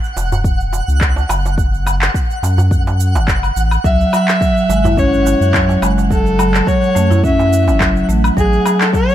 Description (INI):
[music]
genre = organic downtempo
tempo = 106 BPM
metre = 4/4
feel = swing 54% on 16ths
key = F# minor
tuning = A4 = 440 Hz
[part]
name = electronic shaker, handclaps and woodblock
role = drums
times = 0.0-9.1 s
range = none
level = -20 LUFS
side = left 1 dB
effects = none
[part]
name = twinkling granular texture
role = texture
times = 0.0-9.1 s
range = F#5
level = -26 LUFS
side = right 2 dB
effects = built-in reverb
[part]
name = warm sub bass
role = bass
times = 0.2-8.6 s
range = E1 to F#2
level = -16 LUFS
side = equal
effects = tube saturation, sidechain pumping
[part]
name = darbuka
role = percussion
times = 0.2-8.8 s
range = none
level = -24 LUFS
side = right 2 dB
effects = none
[part]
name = electronic kick drum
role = drums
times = 0.4-9.1 s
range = none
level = -18 LUFS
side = equal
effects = none
[part]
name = rich kamancheh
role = melody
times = 3.8-9.1 s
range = G#4 to E5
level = -17 LUFS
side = left 1 dB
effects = tape echo
[part]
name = marimba with medium hard mallets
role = arpeggios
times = 3.8-9.1 s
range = F#3 to E4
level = -16 LUFS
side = right 1 dB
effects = ping-pong delay
[sound]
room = little or no reverb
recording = none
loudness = -12 LUFS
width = side -12 dB against mid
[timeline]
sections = 0.0-9.1 A section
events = none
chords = 0.0 A (rootless); 1.6 N.C.; 3.8 C#m; 6.1 F#m7; 8.4 A